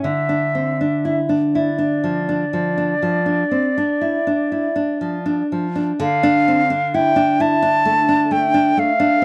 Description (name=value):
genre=romantic duo for flute and classical guitar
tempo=40-44 BPM (dotted quarters)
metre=12/8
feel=rubato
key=D minor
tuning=A4 = 441 Hz
part: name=bright concert flute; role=melody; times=0.0-9.2 s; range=D5 to A5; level=-22 LUFS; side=equal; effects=none
part: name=nylon-string guitar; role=accompaniment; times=0.0-9.2 s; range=D3 to E4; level=-21 LUFS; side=equal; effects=none
room=little or no reverb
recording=dry, close 1970s-style studio recording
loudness=-18 LUFS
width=mono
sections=0.0-6.0 A section; 6.0-9.2 B section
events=none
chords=0.0 Dm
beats=| 0.04 1.53 3.03 4.52 | 6.00 7.40 8.77